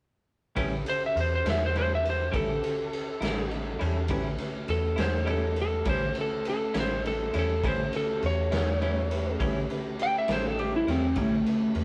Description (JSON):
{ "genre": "slow blues", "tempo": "68 BPM (dotted quarters)", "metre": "12/8", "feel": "straight", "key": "A mixolydian", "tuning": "A4 = 440 Hz", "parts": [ { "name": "clean electric guitar", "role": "accompaniment", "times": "0.6-11.3 s", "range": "A2 to E4", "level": "-38 LUFS", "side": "equal", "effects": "harmonic tremolo" }, { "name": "warm upright piano", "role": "accompaniment", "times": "0.6-11.8 s", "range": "C#4 to B4", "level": "-42 LUFS", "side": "equal", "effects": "none" }, { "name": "mellow tonewheel organ", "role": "sustained chords", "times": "0.6-11.8 s", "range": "A3 to A4", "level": "-40 LUFS", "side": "equal", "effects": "slow rotary speaker, chorus vibrato" }, { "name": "metallic FM bass", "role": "bass", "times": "0.6-11.8 s", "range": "A1 to E2", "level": "-33 LUFS", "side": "equal", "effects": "none" }, { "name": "raw garage drum kit", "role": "drums", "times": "0.6-11.8 s", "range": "kick drum, ride cymbal, snare drum", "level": "-36 LUFS", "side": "equal", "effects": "none" }, { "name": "lightly driven lead guitar", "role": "melody", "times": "0.9-11.8 s", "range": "A3 to G5", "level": "-31 LUFS", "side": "equal", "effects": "analog delay" } ], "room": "moderate stone room reverb, RT60 1.0 s", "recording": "rough rehearsal-room recording", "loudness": "-28 LUFS", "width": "mono", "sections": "0.6-11.8 A section", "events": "lead electric guitar solo 0.6-11.8", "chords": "0.6 A7", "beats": "| 0.57 1.46 2.34 3.22 | 4.11 4.99 5.87 6.76 | 7.64 8.52 9.40 10.29 | 11.17" }